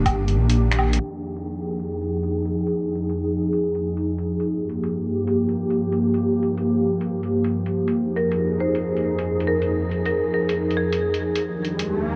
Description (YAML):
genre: future garage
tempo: 138 BPM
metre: 4/4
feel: swing 67% on 16ths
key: F dorian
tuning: A4 = 440 Hz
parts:
  - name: airy breathy pad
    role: sustained chords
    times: 0.0-12.2 s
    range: Eb2 to Ab4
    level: -24 LUFS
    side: equal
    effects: chorus, sidechain pumping
  - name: dark detuned saw bass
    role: bass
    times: 0.0-1.0 s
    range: Eb1 to Bb1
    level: -22 LUFS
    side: equal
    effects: sidechain pumping
  - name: lo-fi sampler-style drum kit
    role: drums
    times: 0.1-11.9 s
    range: finger snaps, hi-hat, woodblock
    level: -32 LUFS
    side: equal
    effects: low-pass filter on hats, vintage 12-bit sampler grit, low-pass filter on snare, low-pass filter on perc, low-pass filter on room
  - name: marimba with hard mallets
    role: melody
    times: 8.2-11.1 s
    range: Ab4 to C5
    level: -28 LUFS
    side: equal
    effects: diffuse ambient delay
  - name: riser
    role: sound effects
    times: 11.6-12.2 s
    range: none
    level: -31 LUFS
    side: equal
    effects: none
room: wet huge ambient reverb, RT60 8.5 s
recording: dreamy mix soaked in reverb, cassette tape, low-pass filter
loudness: -23 LUFS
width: mono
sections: 1.0-12.2 A section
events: band accent 0.7; filter sweep on drum 1.0-12.2; filter sweep on analog synth pad 1.0-12.2; filter sweep 1.0-12.2; riser 11.6-12.2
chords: 0.0 Ebmaj7; 1.0 Fm7; 4.5 Gm7; 8.0 Fm7; 11.4 Ebmaj7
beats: 0.13 0.56 | 1.00 1.43 1.87 2.30 | 2.74 3.17 3.61 4.04 | 4.48 4.91 5.35 5.78 | 6.22 6.65 7.09 7.52 | 7.96 8.39 8.82 9.26 | 9.70 10.13 10.56 11.00 | 11.43 11.87